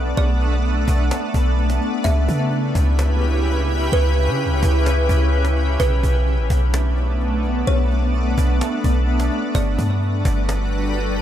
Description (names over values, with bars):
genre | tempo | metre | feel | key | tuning
hip hop, atmospheric cloud-rap | 128 BPM | 4/4 | half-time | B minor | A4 = 439 Hz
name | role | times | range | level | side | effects
shimmering ambient pad | sustained chords | 0.0-11.2 s | C#3 to B4 | -22 LUFS | equal | chorus, built-in reverb
clean 808-style bass | bass | 0.0-11.2 s | G1 to C#3 | -18 LUFS | equal | none
kalimba | melody | 0.2-10.0 s | B4 to E5 | -29 LUFS | right 2 dB | tape echo
cajon | drums | 0.2-11.2 s | none | -27 LUFS | equal | none
room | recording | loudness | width
small room ambience | none | -17 LUFS | side -11 dB against mid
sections
0.0-5.8 A section; 5.8-11.2 A section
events
none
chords
0.0 Bm7; 2.0 C#m7b5; 5.8 Bm7; 9.5 Gmaj7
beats
| 0.17 0.64 1.11 1.58 | 2.05 2.52 2.99 3.46 | 3.92 4.39 4.86 5.33 | 5.80 6.27 6.74 7.21 | 7.67 8.14 8.61 9.08 | 9.55 10.02 10.49 10.96